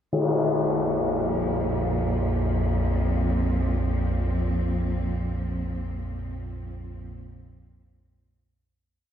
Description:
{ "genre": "dark ambient drone", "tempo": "free time", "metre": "none", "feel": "none", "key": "unclear", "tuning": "A4 = 441 Hz", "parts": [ { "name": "dark symphonic cello section", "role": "sustained chords", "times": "0.1-8.9 s", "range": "Bb2 to C4", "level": "-30 LUFS", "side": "right 1 dB", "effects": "none" }, { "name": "deep rumbling drone", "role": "drone", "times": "0.9-9.0 s", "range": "Bb1 to F2", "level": "-27 LUFS", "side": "right 1 dB", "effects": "built-in reverb, lush chorus" }, { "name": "tam-tam", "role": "percussion", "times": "0.1-0.4 s", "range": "none", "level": "-27 LUFS", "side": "left 2 dB", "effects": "low-pass filter on cymbals" } ], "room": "wet cathedral reverb, RT60 4.6 s", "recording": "none", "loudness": "-23 LUFS", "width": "side -9 dB against mid", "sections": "0.1-8.9 A section", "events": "fade-out on cello section 0.1-8.9; fade-out 4.5-8.9", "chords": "0.1 Bbsus2" }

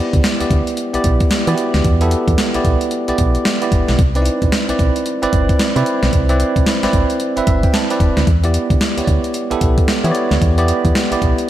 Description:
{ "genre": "R&B, new jack swing", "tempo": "112 BPM", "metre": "4/4", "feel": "swing 62% on 16ths", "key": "E minor", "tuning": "A4 = 440 Hz", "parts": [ { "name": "bell-like tine electric piano", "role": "accompaniment", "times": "0.0-11.5 s", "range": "B3 to B5", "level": "-18 LUFS", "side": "right 2 dB", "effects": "slow stereo tremolo" }, { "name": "solid FM bass", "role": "bass", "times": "0.1-11.3 s", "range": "E1 to E3", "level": "-17 LUFS", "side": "equal", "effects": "none" }, { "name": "crisp 8-bit digital drum machine", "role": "drums", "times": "0.1-11.5 s", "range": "hi-hat, kick drum, snare drum", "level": "-17 LUFS", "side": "equal", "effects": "none" } ], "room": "moderate concert hall reverb, RT60 2.4 s", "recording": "big arena sound", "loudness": "-13 LUFS", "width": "side -12 dB against mid", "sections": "0.0-11.5 A section", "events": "tine electric piano fill 7.2-8.3", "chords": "0.0 Em7; 4.0 Cmaj9; 8.3 Em7" }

